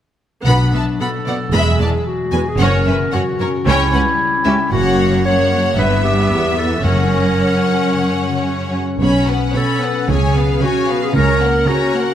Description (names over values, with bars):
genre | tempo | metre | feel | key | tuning
cinematic, heroic adventure film score | 113 BPM | 4/4 | straight | unclear | A4 = 439 Hz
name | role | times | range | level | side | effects
clear studio violin section | melody | 0.5-12.1 s | C#5 to B5 | -24 LUFS | left 3 dB | none
clear symphonic violin section | second line | 0.5-12.1 s | G4 to F#5 | -24 LUFS | left 1 dB | none
warm clarinet | second line | 0.5-12.1 s | C#4 to C#5 | -19 LUFS | equal | none
rich symphonic viola section | accompaniment | 0.5-12.1 s | G#3 to C#4 | -24 LUFS | right 1 dB | none
concert harp | arpeggios | 0.5-12.1 s | E2 to E#5 | -23 LUFS | left 7 dB | none
rich symphonic cello section | bass | 0.5-12.1 s | C#2 to C#3 | -20 LUFS | right 2 dB | none
rich symphonic double bass section | bass | 0.5-11.6 s | E1 to C#2 | -19 LUFS | right 2 dB | none
timpani | percussion | 0.5-1.2, 6.8-7.6 s | F#2 to B2 | -21 LUFS | left 1 dB | none
room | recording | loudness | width
moderate scoring stage reverb, RT60 1.7 s | none | -13 LUFS | side -10 dB against mid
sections
0.5-12.1 A section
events
none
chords
0.5 Bm; 1.5 E; 2.6 F#; 3.7 C#dim; 4.7 F#; 5.8 Em/G; 6.8 F#; 9.0 Bsus2; 10.1 C#7; 11.2 F#/C#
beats
| 0.46 1.00 1.54 2.07 | 2.60 3.13 3.67 4.20 | 4.72 5.25 5.78 6.31 | 6.84 7.39 7.93 8.47 | 9.02 9.56 10.10 10.63 | 11.16 11.68